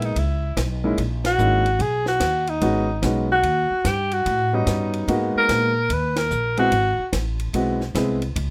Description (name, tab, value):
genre	jazz, small-group swing and bop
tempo	146 BPM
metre	4/4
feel	swing 65% on 8ths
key	G# minor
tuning	A4 = 440 Hz
part	clear alto saxophone	melody	0.0-7.1 s	D#4 to B4	-23 LUFS	equal	none
part	warm grand piano	accompaniment	0.0-8.2 s	G3 to G#4	-26 LUFS	equal	none
part	upright bass	bass	0.0-8.5 s	G#1 to A#2	-27 LUFS	equal	none
part	compact cocktail drum kit	drums	0.0-8.5 s	hi-hat, kick drum, ride cymbal, snare drum	-34 LUFS	equal	none
room	light reverb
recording	none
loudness	-21 LUFS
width	mono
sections	0.0-8.5 A section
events	band accent 1.2, 6.1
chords	0.2 C#m9; 1.0 F#13; 1.8 B6; 3.4 D#7alt; 5.1 G#m9; 6.7 G#7alt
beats	| 0.16 0.57 0.98 1.39 | 1.80 2.21 2.62 3.03 | 3.44 3.85 4.26 4.67 | 5.08 5.49 5.90 6.31 | 6.72 7.13 7.54 7.95 | 8.36